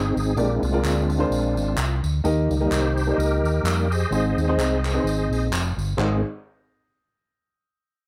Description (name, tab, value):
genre	uptempo gospel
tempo	129 BPM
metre	4/4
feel	swing 56% on 8ths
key	Ab major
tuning	A4 = 440 Hz
part	bright tonewheel organ	sustained chords	0.0-6.2 s	Eb3 to Eb5	-28 LUFS	equal	slow rotary speaker, chorus vibrato
part	fingered electric bass	bass	0.0-6.2 s	F1 to F2	-26 LUFS	equal	none
part	tambourine and handclaps	percussion	0.2-6.2 s	none	-34 LUFS	equal	none
part	warm upright piano	accompaniment	0.4-6.2 s	Ab1 to Eb5	-27 LUFS	equal	none
room	light reverb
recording	dry, close 1970s-style studio recording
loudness	-22 LUFS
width	mono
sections	0.0-6.0 A section; 6.0-7.8 B section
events	tonewheel organ solo 0.0-6.0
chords	0.4 Bb7; 2.2 Eb; 4.1 Ab